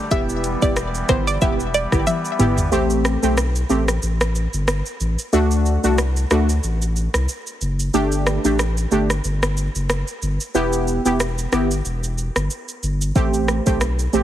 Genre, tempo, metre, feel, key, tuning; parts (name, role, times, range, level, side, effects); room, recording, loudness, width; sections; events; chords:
dancehall; 92 BPM; 4/4; swing 56% on 16ths; A4 = 442 Hz
chamber organ, soft reed; sustained chords; 0.0-2.7 s; E3 to G4; -30 LUFS; equal; sidechain pumping
analog pluck; melody; 0.1-2.5 s; C5 to E5; -24 LUFS; equal; chorus, ping-pong delay
synth brass stab; accompaniment; 0.1-14.2 s; A3 to G4; -21 LUFS; right 1 dB; chorus
saturated sub bass; bass; 0.1-14.2 s; E1 to D2; -22 LUFS; equal
afro-pop drum kit; drums; 0.1-14.2 s; hi-hat, kick drum, rim click, shaker, toms; -23 LUFS; equal
light reverb; heavily compressed radio sound; -18 LUFS; side -12 dB against mid
0.0-2.7 A section; 2.7-14.2 B section
drum fill 2.1-2.7; kick muted 2.7-13.2
0.1 Em; 2.7 Am7; 5.3 D; 7.9 Gsus2; 10.5 Em; 13.2 Am7